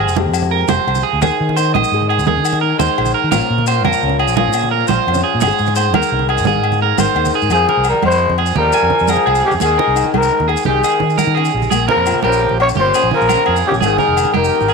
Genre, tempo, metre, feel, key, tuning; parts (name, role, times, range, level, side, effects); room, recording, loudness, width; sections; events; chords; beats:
highlife guitar band; 114 BPM (dotted quarters); 12/8; straight; F minor; A4 = 440 Hz
flamenco guitar; accompaniment; 0.0-14.7 s; F2 to Ab4; -22 LUFS; left 13 dB
electric guitar at the edge of break-up; arpeggios; 0.0-14.7 s; G4 to Ab5; -18 LUFS; right 12 dB; slapback echo
fingered electric bass; bass; 0.0-14.7 s; F1 to Eb3; -19 LUFS; equal
maracas; percussion; 0.1-14.7 s; -30 LUFS; left 14 dB
congas; percussion; 0.2-14.7 s; -22 LUFS; right 12 dB
agogo bells; percussion; 0.3-14.7 s; -24 LUFS; left 13 dB
growling trumpet; melody; 7.5-14.7 s; G4 to Db5; -15 LUFS; left 3 dB
raspy tenor saxophone; second line; 7.5-14.7 s; Eb3 to Bb3; -24 LUFS; right 12 dB
moderate plate reverb, RT60 2.5 s; 1960s-style stereo with parts hard left and right; -12 LUFS; side -4 dB against mid
0.0-7.5 A section; 7.5-14.7 B section
0.0 Fmadd9; 1.2 Ebsus4; 3.3 Bbmadd9; 5.4 Abadd9; 7.5 Fmadd9; 9.6 Ebsus4; 11.7 Bbmadd9; 13.8 Fmadd9
0.17 0.70 | 1.22 1.75 2.27 2.79 | 3.32 3.84 4.37 4.89 | 5.41 5.94 6.46 6.99 | 7.51 8.03 8.56 9.08 | 9.61 10.13 10.66 11.18 | 11.71 12.23 12.76 13.28 | 13.81 14.33